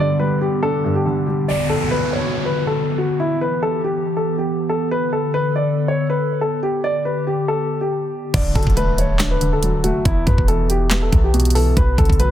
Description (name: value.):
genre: hip hop, trap.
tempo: 140 BPM.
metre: 4/4.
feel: half-time.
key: D major.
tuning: A4 = 440 Hz.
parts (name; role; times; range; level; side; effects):
dark concert grand piano; melody; 0.0-12.3 s; E4 to D5; -21 LUFS; left 1 dB; none.
dark baby grand piano; accompaniment; 0.0-1.5, 8.3-12.3 s; E2 to D4; -22 LUFS; right 1 dB; none.
warbly tape-like pad; sustained chords; 0.0-8.3 s; D3 to A4; -22 LUFS; left 1 dB; chorus, built-in reverb.
downlifter and impact; sound effects; 1.5-4.9, 8.3-10.1 s; none; -26 LUFS; equal; none.
clean 808-style bass; bass; 8.3-12.3 s; D1 to E2; -18 LUFS; equal; none.
trap drum kit; drums; 8.3-12.3 s; crash cymbal, handclaps, hi-hat, kick drum, snare drum; -19 LUFS; equal; none.
room: digital ambience.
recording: dense, heavily limited modern master.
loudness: -16 LUFS.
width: side -11 dB against mid.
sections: 0.0-1.5 A section; 1.5-8.3 B section; 8.3-12.3 A section.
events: break 0.0-1.5; impact 8.3-10.1.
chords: 0.0 G; 1.5 D6; 3.2 Em; 4.9 Bm7; 6.6 G; 8.3 D; 10.1 E5; 11.8 Bm.